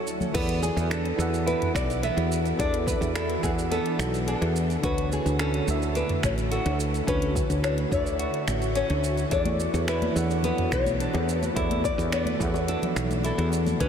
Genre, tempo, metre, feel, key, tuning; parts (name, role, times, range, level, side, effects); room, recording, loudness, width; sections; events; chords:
sunset chillout; 107 BPM; 4/4; straight; A4 = 440 Hz
nylon-string guitar; melody; 0.0-13.9 s; G#4 to E5; -30 LUFS; left 2 dB; tape echo, shimmer reverb
tine electric piano; accompaniment; 0.0-13.9 s; D3 to F#5; -32 LUFS; moving between left 4 dB and right 4 dB; auto-pan, tape echo, shimmer reverb
airy breathy pad; sustained chords; 0.0-13.9 s; D2 to C#5; -34 LUFS; equal; chorus, shimmer reverb
smooth R&B drum kit; drums; 0.1-13.9 s; crash cymbal, finger snaps, hi-hat, shaker, toms; -35 LUFS; right 1 dB
bongos and congas; percussion; 0.2-0.3, 9.3-13.8 s; -35 LUFS; left 3 dB
clean electric guitar; arpeggios; 0.3-13.9 s; B3 to F#4; -34 LUFS; right 2 dB; lush chorus, tape echo, shimmer reverb
woody fretless electric bass; bass; 0.3-13.9 s; A1 to E2; -28 LUFS; equal
electronic kick drum; drums; 0.3-13.9 s; -31 LUFS; equal
moderate huge ambient reverb, RT60 8.5 s; dreamy mix soaked in reverb; -23 LUFS; side -8 dB against mid
0.3-13.9 A section
0.3 E7sus4; 4.8 Dmaj7; 9.3 E7sus4